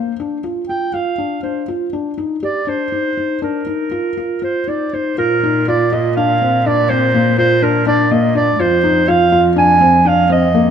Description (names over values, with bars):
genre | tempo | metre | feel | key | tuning
contemporary instrumental, contemporary | 242 BPM (eighths) | 7/8 | straight | unclear | A4 = 440 Hz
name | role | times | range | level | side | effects
felt-muted upright piano | arpeggios | 0.0-10.7 s | Bb3 to G4 | -17 LUFS | left 2 dB | none
mellow clarinet | melody | 0.7-10.7 s | Bb4 to Ab5 | -16 LUFS | right 3 dB | none
warm cello | bass | 5.2-10.7 s | F2 to Bb2 | -18 LUFS | left 1 dB | none
room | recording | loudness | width
moderate scoring stage reverb, RT60 1.8 s | minimal, uncompressed stereo recording | -13 LUFS | side -8 dB against mid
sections
0.0-5.2 A section; 5.2-10.7 B section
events
none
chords
0.0 Bb (rootless); 1.7 Ebmaj7sus2; 5.2 Bbadd9; 8.6 Fm